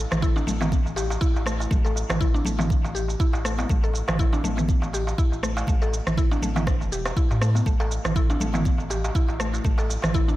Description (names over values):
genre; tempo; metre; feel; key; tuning
afro house; 121 BPM; 4/4; swing 56% on 16ths; unclear; A4 = 438 Hz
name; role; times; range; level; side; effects
warm sub bass; bass; 0.0-10.3 s; E1 to A2; -27 LUFS; equal; sidechain pumping
mallet-like synth pluck; arpeggios; 0.1-10.3 s; E3 to A4; -28 LUFS; equal; chorus, vintage 12-bit sampler grit, sidechain pumping, diffuse ambient delay
afro-pop drum kit; drums; 0.1-10.4 s; rim click, shaker, toms; -32 LUFS; right 1 dB; none
darbuka; percussion; 0.1-10.4 s; none; -34 LUFS; right 2 dB; none
electronic kick drum; drums; 0.2-10.3 s; none; -22 LUFS; equal; none
congas; percussion; 0.4-10.4 s; none; -34 LUFS; left 2 dB; none
room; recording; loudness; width
light reverb, digital ambience; none; -21 LUFS; side -16 dB against mid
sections
0.0-10.4 A section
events
none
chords
0.0 A5; 7.7 N.C.